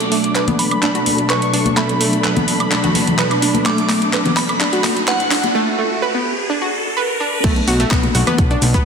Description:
progressive house; 127 BPM; 4/4; straight; B minor; A4 = 440 Hz
glassy synth bell; melody; 0.0-5.5 s; F#5 to D6; -25 LUFS; right 1 dB; chorus, sidechain pumping, low-pass filter, ping-pong delay
soft supersaw; second line; 0.0-5.5 s; F#5 to D6; -26 LUFS; equal; sidechain pumping, low-pass filter, tape echo
dark studio string section; sustained chords; 0.0-8.8 s; B2 to D4; -21 LUFS; equal; sidechain pumping, low-pass filter
pop drum kit; drums; 0.0-8.8 s; cabasa, crash cymbal, handclaps, hi-hat, woodblock; -20 LUFS; equal; soft clipping on snare
riser; sound effects; 0.0-7.4 s; -26 LUFS; equal
analog pluck; arpeggios; 0.1-8.8 s; A3 to F#5; -20 LUFS; right 2 dB; chorus, sidechain pumping, tape echo
congas; percussion; 0.5-8.7 s; -24 LUFS; left 4 dB; sidechain pumping on perc
fat analog bass; bass; 7.4-8.8 s; B1; -18 LUFS; equal; tube saturation, sidechain pumping
electronic kick drum; drums; 7.4-8.8 s; -17 LUFS; equal
wet lush hall reverb, RT60 2.2 s; dense, heavily limited modern master, high-pass filter; -14 LUFS; side -6 dB against mid
0.0-7.4 A section; 7.4-8.8 B section
build-up 0.0-7.4; drum fill 0.0-5.5; riser 0.0-7.4; filter sweep on string section 0.0-7.4; filter sweep on synth bell 0.0-7.4; filter sweep on supersaw synth 0.0-7.4; break 5.5-7.4; drop 7.4-8.8
0.0 Bm7
0.35 0.82 1.30 | 1.77 2.24 2.71 3.19 | 3.66 4.13 4.61 5.08 | 5.55 6.02 6.49 6.97 | 7.44 7.91 8.38

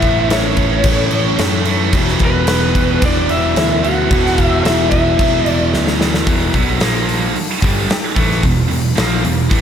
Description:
hard rock; 111 BPM; 4/4; straight; A4 = 443 Hz
lead guitar through a small cranked amp; melody; 0.0-5.7 s; B4 to F#5; -19 LUFS; left 2 dB; overdrive, slapback echo, digital delay
vibraphone with soft mallets; second line; 0.0-5.7 s; B3 to F#4; -24 LUFS; right 3 dB
overdriven semi-hollow guitar; riff; 0.0-9.6 s; E2 to B3; -22 LUFS; left 7 dB; slapback echo
scooped high-gain guitar; riff; 0.0-9.6 s; E2 to B3; -20 LUFS; right 8 dB; distortion, slapback echo
picked electric bass; bass; 0.0-9.6 s; E1 to F#2; -19 LUFS; equal
huge arena drum kit; drums; 0.0-9.6 s; crash cymbal, hi-hat, kick drum, snare drum; -17 LUFS; equal
moderate lush hall reverb, RT60 2.2 s; big arena sound; -12 LUFS; side -8 dB against mid
0.0-6.3 A section; 6.3-9.6 B section
drum fill 5.7-6.3
0.0 A; 1.9 E5; 6.8 A#5; 7.4 E5
0.31 0.85 1.40 | 1.94 2.48 3.02 3.57 | 4.11 4.65 5.19 5.73 | 6.27 6.81 7.35 7.89 | 8.44 8.97 9.51

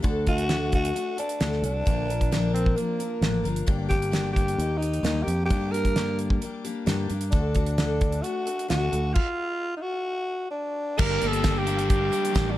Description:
folk rock and heartland rock; 132 BPM; 4/4; straight; G minor; A4 = 439 Hz
picked steel-string acoustic guitar; accompaniment; 0.0-12.6 s; G2 to Bb4; -31 LUFS; left 4 dB
fingered electric bass; bass; 0.0-12.6 s; G1 to G2; -27 LUFS; equal
damped 70s drum kit; drums; 0.0-12.5 s; crash cymbal, hi-hat, kick drum, snare drum; -26 LUFS; equal
raspy tenor saxophone; melody; 0.3-12.6 s; Bb3 to Bb4; -28 LUFS; equal; tape echo
bright tonewheel organ; sustained chords; 11.0-12.6 s; Bb3 to D6; -41 LUFS; equal
overdriven electric guitar; riff; 11.0-12.6 s; G2 to G4; -29 LUFS; right 1 dB
tambourine; percussion; 11.0-12.5 s; -46 LUFS; right 7 dB
little or no reverb; dark, warm production; -23 LUFS; side -14 dB against mid
0.0-11.0 A section; 11.0-12.6 B section
stop 9.2-11.0
0.0 D; 1.9 Bb; 3.7 Gm; 4.6 Eb; 5.5 Gm; 7.3 D; 9.2 N.C.; 11.0 Gm
| 0.04 0.50 0.95 1.41 | 1.86 2.31 2.77 3.23 | 3.68 4.14 4.59 5.05 | 5.50 5.96 6.42 6.88 | 7.33 7.79 8.25 8.70 | 9.16 9.62 10.07 10.53 | 10.99 11.44 11.90 12.35

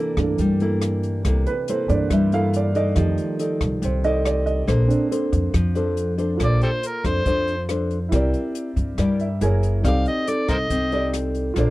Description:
bossa nova; 140 BPM; 4/4; straight; Bb major; A4 = 440 Hz
nylon-string guitar; accompaniment; 0.0-11.7 s; C3 to D5; -24 LUFS; left 2 dB
warm grand piano; accompaniment; 0.0-11.7 s; Eb3 to D6; -26 LUFS; right 4 dB
upright bass; bass; 0.2-11.7 s; Gb1 to G2; -22 LUFS; equal
open jazz drum kit; drums; 0.2-11.7 s; hi-hat, kick drum, rim click; -28 LUFS; equal
overdriven harmonica; melody; 6.4-11.1 s; G4 to F5; -24 LUFS; equal
little or no reverb; dry, close 1970s-style studio recording; -19 LUFS; side -18 dB against mid
0.0-6.4 A section; 6.4-11.7 A section
grand piano solo 0.0-6.4; harmonica solo 6.4-11.7; grand piano fill 9.0-9.8
0.0 C13; 3.0 F13; 4.7 Bbmaj9; 8.1 C9; 9.4 Gb9; 9.8 Cm69
0.39 0.82 | 1.25 1.68 2.11 2.54 | 2.97 3.40 3.83 4.26 | 4.69 5.12 5.55 5.98 | 6.41 6.84 7.27 7.70 | 8.13 8.56 8.99 9.42 | 9.85 10.28 10.71 11.13 | 11.56

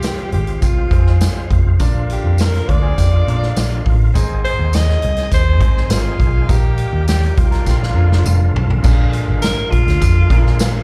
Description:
uptempo 1960s-style soul; 102 BPM; 4/4; straight; A4 = 440 Hz
breathy alto saxophone; melody; 0.0-10.8 s; F4 to Eb5; -25 LUFS; equal; plate reverb, slapback echo
bright baby grand piano; accompaniment; 0.0-10.7 s; Ab2 to D5; -30 LUFS; equal; slapback echo
overdriven tonewheel organ; sustained chords; 0.0-10.8 s; D3 to Ab4; -32 LUFS; equal; slow rotary speaker, chorus vibrato, plate reverb
vintage muted picked electric bass; bass; 0.0-10.8 s; F1 to Bb2; -18 LUFS; equal
swinging big-band drum kit; drums; 0.0-10.7 s; crash cymbal, hi-hat, kick drum, snare drum, toms; -19 LUFS; equal
tambourine; percussion; 0.0-10.7 s; -33 LUFS; equal
electric guitar through a small old amp; riff; 2.7-4.0, 7.5-8.7 s; Ab3 to Bb4; -33 LUFS; equal; slapback echo
little or no reverb; live gig heard through the venue's PA, club reverb; -15 LUFS; mono
0.0-8.8 A section; 8.8-10.8 B section
drum fill 7.7-8.8
0.0 Fm; 1.8 Bb; 4.2 Ab; 6.5 Eb/Bb; 7.7 Bb; 8.8 Bb7
0.04 0.62 1.21 | 1.80 2.39 2.98 3.56 | 4.15 4.74 5.33 5.91 | 6.50 7.08 7.67 8.26 | 8.84 9.43 10.01 10.60

